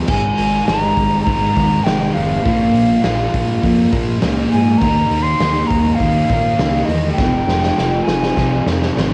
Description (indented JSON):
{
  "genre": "rock, shoegaze and dream pop",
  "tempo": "101 BPM",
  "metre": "4/4",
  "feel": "straight",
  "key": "Ab major",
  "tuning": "A4 = 437 Hz",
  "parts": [
    { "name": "fuzz guitar", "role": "riff", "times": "0.0-9.1 s", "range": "F2 to Eb4", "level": "-20 LUFS", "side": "equal", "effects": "distortion, subtle chorus, cassette tape" },
    { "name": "fat analog bass", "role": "bass", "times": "0.0-9.1 s", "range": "F1 to Bb2", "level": "-24 LUFS", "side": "equal", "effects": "none" },
    { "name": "mellow hollow jazz flute", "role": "melody", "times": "0.1-8.7 s", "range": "Eb5 to C6", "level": "-22 LUFS", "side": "equal", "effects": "cassette tape, analog delay" },
    { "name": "raw garage drum kit", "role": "drums", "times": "0.1-9.1 s", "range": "crash cymbal, hi-hat, kick drum, snare drum", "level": "-22 LUFS", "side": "equal", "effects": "none" }
  ],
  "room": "light reverb",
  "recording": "home recording on cassette",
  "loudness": "-16 LUFS",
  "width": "mono",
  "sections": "0.0-9.1 A section",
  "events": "drum fill 7.2-9.1",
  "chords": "0.1 Absus2; 2.5 Bbm7; 4.8 Ebsus2; 7.2 Fmadd9"
}